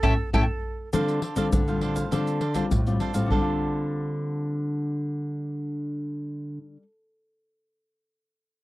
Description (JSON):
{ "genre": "samba and choro", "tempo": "101 BPM", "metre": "4/4", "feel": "straight", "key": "D minor", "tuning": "A4 = 440 Hz", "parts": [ { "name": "wooden flute", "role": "second line", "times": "0.0-0.9 s", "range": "A4", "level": "-34 LUFS", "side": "right 6 dB", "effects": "none" }, { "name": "cavaquinho", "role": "accompaniment", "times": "0.0-6.8 s", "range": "D4 to F5", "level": "-34 LUFS", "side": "right 6 dB", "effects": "none" }, { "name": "nylon-string guitar", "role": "accompaniment", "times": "0.0-6.9 s", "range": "A2 to F4", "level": "-31 LUFS", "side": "left 3 dB", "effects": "none" }, { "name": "nylon-string guitar", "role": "bass", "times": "0.0-6.6 s", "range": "A2 to D3", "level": "-27 LUFS", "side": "equal", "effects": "none" }, { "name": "surdo, egg shaker and pandeiro", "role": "percussion", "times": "0.0-3.4 s", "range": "none", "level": "-27 LUFS", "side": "equal", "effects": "none" } ], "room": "little or no reverb", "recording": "dry, close 1970s-style studio recording", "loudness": "-24 LUFS", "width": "side -18 dB against mid", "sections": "0.9-3.3 A section; 3.3-5.7 B section", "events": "band accent 0.0-0.9", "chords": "0.0 A7; 0.9 Dm7" }